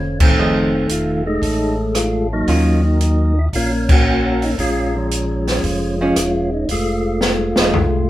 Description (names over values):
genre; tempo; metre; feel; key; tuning
soul jazz organ trio; 114 BPM; 4/4; swing 69% on 8ths; unclear; A4 = 438 Hz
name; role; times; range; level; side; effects
percussive tonewheel organ; melody; 0.0-8.1 s; Eb3 to Gb4; -18 LUFS; equal; slow rotary speaker
tonewheel organ; bass; 0.0-8.1 s; E1 to Eb2; -21 LUFS; equal; slow rotary speaker
open jazz drum kit; drums; 0.2-7.9 s; crash cymbal, hi-hat, kick drum, rim click, snare drum, toms; -18 LUFS; equal; none
archtop guitar, miked and amplified; accompaniment; 0.4-2.8, 6.0-7.7 s; Eb3 to G#4; -21 LUFS; right 2 dB; none
room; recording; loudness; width
light reverb; band playing live in one room; -15 LUFS; side -14 dB against mid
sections
0.0-8.1 A section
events
drum fill 0.0-0.4, 7.2-8.1; band accent 0.1, 3.8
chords
0.4 F7#9; 2.5 Ebm9; 4.6 Bbm7; 6.7 F(#9)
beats
| 0.37 0.90 1.43 1.95 | 2.48 3.00 3.53 4.06 | 4.58 5.11 5.63 6.16 | 6.69 7.21 7.74